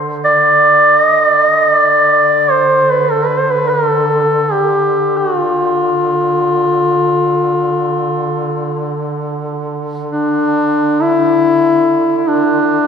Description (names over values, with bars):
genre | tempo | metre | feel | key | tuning
caucasian folk, Caucasian lament | free time | none | none | D dorian | A4 = 445 Hz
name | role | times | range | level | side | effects
warm duduk | drone | 0.0-12.9 s | D3 | -21 LUFS | right 2 dB | none
warm duduk | melody | 0.2-12.9 s | D4 to D5 | -11 LUFS | equal | none
room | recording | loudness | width
wet church reverb, RT60 2.7 s | recorded in a church or concert hall | -11 LUFS | side -7 dB against mid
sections
0.0-12.9 A section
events
slowing down 6.4-12.9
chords
none